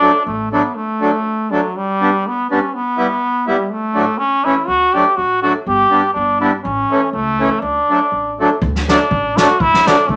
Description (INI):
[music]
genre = alpine folk, alpine dance band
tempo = 122 BPM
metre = 2/4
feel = straight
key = D major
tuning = A4 = 437 Hz
[part]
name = trombone with metal mute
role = melody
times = 0.0-10.2 s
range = F#3 to G4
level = -18 LUFS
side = equal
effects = none
[part]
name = accordion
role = accompaniment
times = 0.0-10.0 s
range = A2 to E4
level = -19 LUFS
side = equal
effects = none
[part]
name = upright bass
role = bass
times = 0.3-0.6, 4.7-10.2 s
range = G1 to D2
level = -28 LUFS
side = equal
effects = none
[part]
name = unplugged drum kit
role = drums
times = 8.6-10.2 s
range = kick drum, snare drum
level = -21 LUFS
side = equal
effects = none
[sound]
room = wet small room reverb, RT60 0.6 s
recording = none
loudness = -16 LUFS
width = mono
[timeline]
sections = 0.7-8.6 A section; 8.6-10.2 B section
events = none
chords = 0.0 D; 1.7 G; 2.7 Em; 3.7 D/A; 4.2 A; 4.7 D; 5.7 G; 6.6 A; 7.6 D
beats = 0.24 | 0.74 1.23 | 1.72 2.21 | 2.70 3.19 | 3.68 4.18 | 4.67 5.17 | 5.66 6.15 | 6.64 7.13 | 7.62 8.11 | 8.61 9.11 | 9.60 10.09